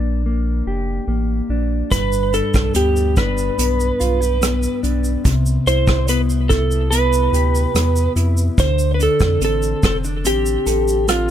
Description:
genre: indie pop, bedroom pop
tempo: 72 BPM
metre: 4/4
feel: straight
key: C major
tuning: A4 = 441 Hz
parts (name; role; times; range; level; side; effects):
- mellow electric guitar; accompaniment; 0.0-11.3 s; G2 to A4; -22 LUFS; left 3 dB; wide subtle chorus, vibrato effect
- round analog bass; bass; 0.0-11.3 s; F1 to F2; -19 LUFS; equal; none
- electric slide guitar; melody; 1.9-11.3 s; F4 to C5; -19 LUFS; right 2 dB; wide subtle chorus, tape echo
- unplugged drum kit; drums; 1.9-11.3 s; hi-hat, kick drum, rim click, shaker; -20 LUFS; right 1 dB; none
room: studio ambience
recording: none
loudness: -15 LUFS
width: side -10 dB against mid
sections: 0.0-11.3 A section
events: none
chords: 0.0 Bb6; 1.9 G; 5.2 Cmaj7; 8.6 Dm7

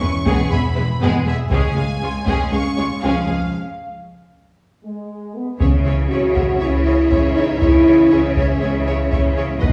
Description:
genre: cinematic, epic orchestral film score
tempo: 119 BPM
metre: 4/4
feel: straight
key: C# minor from 5.6 s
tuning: A4 = 440 Hz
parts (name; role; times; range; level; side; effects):
- warm symphonic violin section; melody; 0.0-9.7 s; E5 to C#6; -33 LUFS; equal; none
- warm symphonic violin section; second line; 0.0-9.7 s; B3 to E#5; -30 LUFS; equal; none
- rich symphonic viola section; accompaniment; 0.0-9.7 s; G#3 to B4; -31 LUFS; equal; none
- dark French horn section; sustained chords; 0.0-9.7 s; E#3 to F#4; -22 LUFS; equal; none
- rich symphonic cello section; bass; 0.0-9.7 s; C#2 to C#3; -26 LUFS; equal; none
- warm symphonic double bass section; bass; 0.0-9.7 s; E1 to C#2; -26 LUFS; equal; none
- solo taiko drums; drums; 0.3-9.7 s; none; -24 LUFS; equal; none
- timpani; percussion; 1.5-2.2, 5.6-6.3 s; C#3; -27 LUFS; equal; none
- bright trombone section; sustained chords; 5.6-9.7 s; E3 to E4; -30 LUFS; equal; none
- warm studio string section; sustained chords; 5.6-9.7 s; C#4 to E5; -29 LUFS; equal; none
room: wet recital hall reverb, RT60 1.5 s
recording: heard from further back in the room, small room ambience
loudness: -17 LUFS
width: mono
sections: 0.0-5.6 A section; 5.6-9.7 B section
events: break 3.5-5.6; drum fill 4.8-5.6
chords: 0.0 E; 1.5 C#; 5.6 C#m

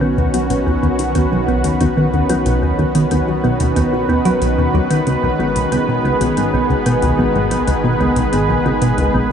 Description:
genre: ambient, sequencer-driven space music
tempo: 92 BPM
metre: 4/4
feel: straight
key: B major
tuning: A4 = 440 Hz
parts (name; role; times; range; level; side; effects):
- lush unison pad; sustained chords; 0.0-9.3 s; D#3 to B4; -17 LUFS; equal; chorus, shimmer reverb
- thumb-piano-like synth pluck; arpeggios; 0.0-9.3 s; B2 to F#4; -23 LUFS; moving between left 2 dB and right 5 dB; chorus, auto-pan, cassette tape, ping-pong delay
- plucky analog bass; riff; 0.0-9.2 s; G#1 to F#3; -18 LUFS; equal; wide subtle chorus, ping-pong delay
- warm sub bass; bass; 0.0-9.3 s; G#1 to B1; -28 LUFS; equal; none
- electronic hi-hat and bongos; percussion; 0.3-9.1 s; none; -31 LUFS; left 5 dB; ping-pong delay
room: wet huge ambient reverb, RT60 7.0 s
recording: nothing above 11.0 kHz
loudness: -14 LUFS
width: side -8 dB against mid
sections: 0.0-9.3 A section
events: filter sweep on analog synth bass 0.0-9.3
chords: 0.0 Badd9; 5.1 G#m

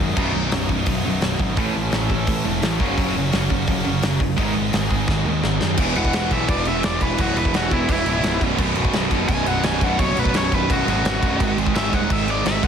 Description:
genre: punk rock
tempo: 171 BPM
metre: 4/4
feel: straight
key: B major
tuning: A4 = 440 Hz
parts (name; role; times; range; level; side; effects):
- overdriven electric guitar; riff; 0.0-12.7 s; B1 to A3; -27 LUFS; left 10 dB; none
- tight distorted guitar; riff; 0.0-12.7 s; B1 to A4; -26 LUFS; right 1 dB; distortion
- fuzz picked electric bass; bass; 0.0-12.7 s; B0 to F#2; -25 LUFS; equal; overdrive
- distorted electric guitar; riff; 0.2-12.7 s; B1 to A3; -25 LUFS; right 11 dB; distortion
- big rock drum kit; drums; 0.2-12.7 s; crash cymbal, hi-hat, kick drum, snare drum; -23 LUFS; equal; none
- cranked stack guitar; melody; 6.0-12.7 s; E4 to G#5; -25 LUFS; left 1 dB; overdrive, tape echo
room: light reverb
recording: dense, heavily limited modern master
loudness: -18 LUFS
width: side -7 dB against mid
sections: 0.0-5.8 A section; 5.8-12.7 B section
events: drum fill 5.1-5.8; overdriven electric guitar solo 5.8-12.7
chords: 0.2 B; 1.6 A; 2.8 F#; 4.4 G#m; 5.8 E5; 8.4 B5; 11.4 G#5

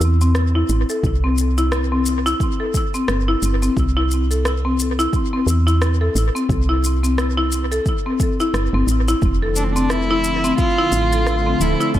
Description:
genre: organic downtempo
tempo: 88 BPM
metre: 4/4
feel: swing 59% on 16ths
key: C major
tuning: A4 = 437 Hz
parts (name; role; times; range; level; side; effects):
- woody FM bass; bass; 0.0-12.0 s; D1 to E2; -19 LUFS; right 1 dB; sidechain pumping
- electronic shaker and rim click; drums; 0.0-12.0 s; none; -28 LUFS; left 1 dB; dub echo
- buzzing marimba with hard mallets; arpeggios; 0.2-11.9 s; C4 to A4; -20 LUFS; left 2 dB; vintage 12-bit sampler grit, low-pass filter, analog delay, shimmer reverb
- electronic kick drum; drums; 1.0-12.0 s; none; -21 LUFS; right 1 dB; none
- warm analog pad; sustained chords; 9.2-12.0 s; D3 to C4; -25 LUFS; equal; lush chorus, sidechain pumping
- warm cello; melody; 9.6-12.0 s; C4 to F4; -20 LUFS; right 1 dB; analog delay, shimmer reverb
room: light reverb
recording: echo-heavy mix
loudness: -16 LUFS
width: side -12 dB against mid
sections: 0.0-12.0 A section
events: none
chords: 0.0 C6; 9.2 F6

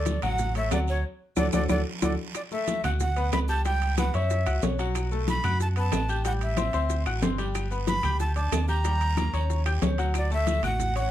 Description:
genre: latin, salsa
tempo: 185 BPM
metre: 4/4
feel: straight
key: D major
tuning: A4 = 439 Hz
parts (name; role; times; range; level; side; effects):
- breathy bright jazz flute; melody; 0.0-11.1 s; C#5 to B5; -30 LUFS; right 1 dB; none
- bright concert grand piano; accompaniment; 0.0-11.1 s; F#3 to G6; -32 LUFS; left 4 dB; none
- fingered electric bass; bass; 0.0-11.1 s; G1 to F#2; -27 LUFS; equal; none
- bongos; percussion; 0.1-11.0 s; none; -34 LUFS; left 6 dB; none
- congas; percussion; 0.1-11.1 s; none; -34 LUFS; left 1 dB; none
- guiro; percussion; 0.1-11.1 s; none; -43 LUFS; right 7 dB; none
- maracas; percussion; 0.1-11.1 s; none; -42 LUFS; right 12 dB; none
- timbales; percussion; 0.1-11.1 s; none; -35 LUFS; right 8 dB; none
- claves; percussion; 0.2-10.8 s; none; -42 LUFS; left 6 dB; none
room: moderate small room reverb, RT60 0.5 s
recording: dark, warm production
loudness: -24 LUFS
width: side -12 dB against mid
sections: 0.0-2.3 A section; 2.3-11.1 B section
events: band accent 1.0-2.3; drum fill 1.5-2.3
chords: 0.0 D; 2.3 D6; 3.7 C#m7b5; 4.3 F#5; 5.0 B5; 6.3 Am7; 6.9 D7; 7.5 G; 8.8 Eb7; 10.1 Dmaj7

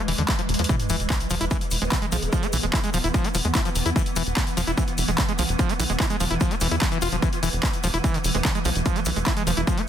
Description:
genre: psychedelic trance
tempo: 147 BPM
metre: 4/4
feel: straight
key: E major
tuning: A4 = 441 Hz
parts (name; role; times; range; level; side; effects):
- swarming drone; sustained chords; 0.0-9.9 s; E3 to B3; -30 LUFS; right 2 dB; built-in reverb, sidechain pumping
- screaming distorted acid line; riff; 0.0-9.8 s; D3 to F4; -28 LUFS; moving between left 8 dB and right 7 dB; distortion, chorus, auto-pan, vintage 12-bit sampler grit, sidechain pumping, dub echo
- tight sequencer bass; bass; 0.1-9.6 s; E1 to E2; -26 LUFS; equal; none
- techno drum kit; drums; 0.1-9.9 s; handclaps, hi-hat; -28 LUFS; equal; overdrive
- electronic kick drum; drums; 0.3-9.8 s; none; -24 LUFS; equal; overdrive
- egg shaker; percussion; 0.7-9.9 s; none; -37 LUFS; left 3 dB; none
- sub drop; sound effects; 0.7-2.3 s; none; -34 LUFS; equal; none
- formant-sweep wobble bass; second line; 1.8-2.5, 8.3-8.5 s; G#3 to B3; -38 LUFS; right 1 dB; none
room: light reverb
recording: dense, heavily limited modern master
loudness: -21 LUFS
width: side -10 dB against mid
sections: 0.7-9.9 A section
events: drum fill 0.5; drop 0.7-9.9; impact 0.7-2.3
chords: 0.0 E5

